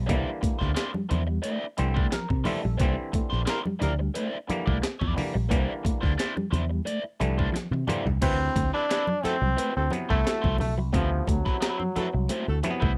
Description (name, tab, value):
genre	funk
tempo	88 BPM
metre	4/4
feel	straight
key	D mixolydian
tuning	A4 = 441 Hz
part	electric guitar at the edge of break-up	riff	0.0-12.9 s	F3 to C4	-36 LUFS	equal	tremolo
part	picked electric bass with an envelope filter	bass	0.0-12.9 s	Bb1 to C3	-29 LUFS	equal	none
part	crunchy overdriven guitar	accompaniment	0.1-12.9 s	Bb3 to D5	-35 LUFS	equal	wah
part	auto-wah clav	stabs	0.1-13.0 s	C3 to C5	-35 LUFS	equal	overdrive, slapback echo
part	breakbeat sampler-style drum kit	drums	0.1-13.0 s	crash cymbal, hi-hat, kick drum, snare drum, toms	-31 LUFS	equal	none
part	congas	percussion	0.1-12.8 s	none	-37 LUFS	equal	none
part	mellow horn section	second line	3.5-3.9, 9.2-12.6 s	A3 to Bb4	-35 LUFS	equal	none
part	bright trombone	melody	8.2-12.6 s	F3 to D4	-31 LUFS	equal	none
room	little or no reverb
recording	dry, close 1970s-style studio recording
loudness	-27 LUFS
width	mono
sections	0.0-8.2 A section; 8.2-13.0 B section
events	clav fill 1.4-2.8; drum fill 7.5-8.2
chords	0.1 C9; 8.2 D13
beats	| 0.09 0.77 1.44 2.12 | 2.80 3.48 4.15 4.83 | 5.51 6.19 6.87 7.54 | 8.22 8.90 9.58 10.26 | 10.94 11.62 12.30